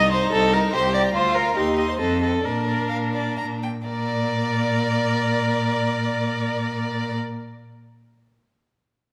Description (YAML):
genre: quick classical-period movement for string quartet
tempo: 121-145 BPM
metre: 3/4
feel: straight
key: Bb major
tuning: A4 = 441 Hz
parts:
  - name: clear violin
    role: melody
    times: 0.0-7.1 s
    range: D5 to C6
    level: -32 LUFS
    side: equal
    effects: none
  - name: rich violin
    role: second line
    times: 0.0-7.2 s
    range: C4 to D5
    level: -30 LUFS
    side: equal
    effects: none
  - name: clear viola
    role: accompaniment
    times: 0.0-7.2 s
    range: G4 to Eb5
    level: -26 LUFS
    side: equal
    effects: none
  - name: clear cello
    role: bass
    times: 0.0-7.2 s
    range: C2 to Bb2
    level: -28 LUFS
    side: equal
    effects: none
room: wet recital hall reverb, RT60 1.5 s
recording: none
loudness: -22 LUFS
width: mono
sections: 0.0-3.9 A section; 3.9-6.8 B section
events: slowing down 0.5-3.9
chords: 0.0 Cm7; 1.2 Bb/D; 1.6 Cm/Eb; 2.0 F7; 2.5 Bb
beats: 0.32 0.73 | 1.15 1.57 2.01 | 2.46 2.92 3.39 | 3.88 4.37 4.86 | 5.35 5.84 6.33